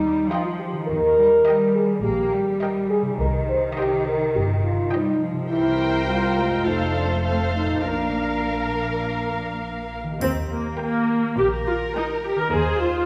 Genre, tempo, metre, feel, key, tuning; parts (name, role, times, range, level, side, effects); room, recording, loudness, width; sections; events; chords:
cinematic, playful, whimsical film cue; 104 BPM; 4/4; straight; Eb major; A4 = 440 Hz
dark French horn section; sustained chords; 0.0-9.6 s; C4 to C5; -24 LUFS; equal
concert harp; arpeggios; 0.0-13.1 s; F2 to Eb5; -35 LUFS; equal
muted chamber cello section; bass; 0.0-13.0 s; Eb2 to Bb3; -31 LUFS; equal
muted symphonic double bass section; bass; 0.0-13.0 s; F1 to Eb2; -31 LUFS; equal
muted chamber violin section; melody; 0.3-13.1 s; Bb4 to G5; -33 LUFS; equal
muted chamber violin section; second line; 0.3-12.4 s; Bb4 to G5; -34 LUFS; equal
muted studio viola section; accompaniment; 0.3-13.1 s; Bb3 to Eb5; -28 LUFS; equal
triangle; percussion; 10.2-11.3 s; -44 LUFS; equal
wet scoring stage reverb, RT60 1.9 s; recorded in a church or concert hall; -22 LUFS; mono
0.0-10.2 A section; 10.2-13.1 B section
0.0 Cm/Eb (rootless); 0.9 Eb; 3.2 Cm; 5.5 C7; 6.7 F; 7.8 Bb; 10.2 Eb; 12.5 Ab/Eb